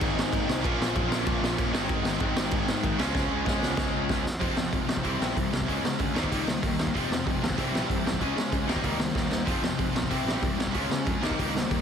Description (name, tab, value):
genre	punk rock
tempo	190 BPM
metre	4/4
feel	straight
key	F minor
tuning	A4 = 440 Hz
part	distorted electric guitar	riff	0.0-11.8 s	F2 to Eb4	-32 LUFS	left 13 dB	distortion
part	distorted electric guitar	riff	0.0-11.8 s	Ab2 to F4	-34 LUFS	right 15 dB	distortion
part	distorted electric guitar	riff	0.0-11.8 s	Ab2 to F4	-32 LUFS	right 1 dB	overdrive
part	fuzz picked electric bass	bass	0.0-11.8 s	F1 to Db3	-34 LUFS	equal	overdrive
part	raw garage drum kit	drums	0.0-11.8 s	crash cymbal, hi-hat, kick drum, snare drum	-29 LUFS	right 1 dB	none
room	little or no reverb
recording	dense, heavily limited modern master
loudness	-25 LUFS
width	side -7 dB against mid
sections	0.0-4.4 A section; 4.4-11.8 B section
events	drum fill 3.1-4.4, 9.2-9.5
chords	0.0 Ab; 0.6 Bbm; 1.7 Ab; 3.0 Db; 4.4 Fm; 5.0 C; 5.7 Db; 6.1 Eb; 6.9 Fm; 7.6 C; 8.2 Db; 8.7 Eb; 9.5 Fm; 10.1 C; 10.7 Db; 11.2 Eb